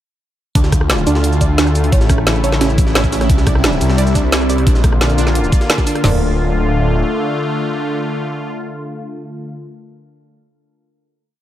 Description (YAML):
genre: dark technical drum and bass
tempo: 175 BPM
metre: 4/4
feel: straight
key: D minor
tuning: A4 = 440 Hz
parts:
  - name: sweeping resonant pad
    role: sustained chords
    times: 0.6-9.5 s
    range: C3 to F4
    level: -21 LUFS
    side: left 1 dB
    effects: chorus, sidechain pumping
  - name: wide unison pluck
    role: arpeggios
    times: 0.6-6.2 s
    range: C#4 to D5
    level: -23 LUFS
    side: right 4 dB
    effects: sidechain pumping, dub echo
  - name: phased detuned saw bass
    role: bass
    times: 0.6-7.0 s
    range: D1 to D2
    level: -16 LUFS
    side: equal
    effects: phaser, overdrive, sidechain pumping
  - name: drum and bass drum kit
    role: drums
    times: 0.6-6.1 s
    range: crash cymbal, kick drum, snare drum, toms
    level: -14 LUFS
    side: equal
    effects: overdrive
  - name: drum and bass drum kit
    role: drums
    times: 0.6-6.0 s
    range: hi-hat, rim click, shaker, snare drum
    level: -20 LUFS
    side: equal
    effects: overdrive
  - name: jungle sampler-style drum kit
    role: drums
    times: 0.6-5.9 s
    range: hi-hat, snare drum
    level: -26 LUFS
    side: equal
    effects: high-pass filter on hats, high-pass filter on snare, high-pass filter on room
  - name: deep dark ambient pad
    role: texture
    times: 1.3-9.5 s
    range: C4 to C6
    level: -23 LUFS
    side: equal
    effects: chorus, built-in reverb, sidechain pumping
room: digital ambience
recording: none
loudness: -12 LUFS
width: side -12 dB against mid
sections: 0.6-6.0 drop; 6.0-8.8 final chord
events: drop 0.6-6.0; band accent 5.7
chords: 0.6 Dm; 1.9 A; 3.3 C; 4.7 Bb; 6.0 Dm